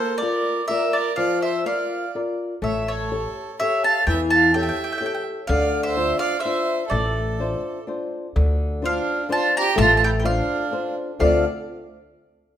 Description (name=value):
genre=italian folk, Italian serenade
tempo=126 BPM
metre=3/4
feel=straight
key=D minor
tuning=A4 = 440 Hz
part: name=mandolin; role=melody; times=0.0-11.4 s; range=C5 to Bb5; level=-22 LUFS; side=right 1 dB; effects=none
part: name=clear violin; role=second line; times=0.0-11.5 s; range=D4 to F5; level=-28 LUFS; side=right 6 dB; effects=none
part: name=flamenco guitar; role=accompaniment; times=0.0-11.4 s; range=D3 to D5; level=-24 LUFS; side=left 2 dB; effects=none
part: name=upright bass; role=bass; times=2.6-11.4 s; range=A1 to E2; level=-24 LUFS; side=equal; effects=none
room=moderate recital hall reverb, RT60 1.5 s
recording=minimal, uncompressed stereo recording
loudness=-19 LUFS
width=side -10 dB against mid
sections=0.0-8.4 A section; 8.4-11.2 B section; 11.2-12.6 C section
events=none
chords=0.0 Bb; 2.6 A7; 5.5 Dm7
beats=0.22 0.69 | 1.17 1.65 2.14 | 2.62 3.10 3.59 | 4.07 4.54 5.02 | 5.49 5.97 6.44 | 6.92 7.39 7.88 | 8.36 8.84 9.31 | 9.78 10.25 10.73 | 11.21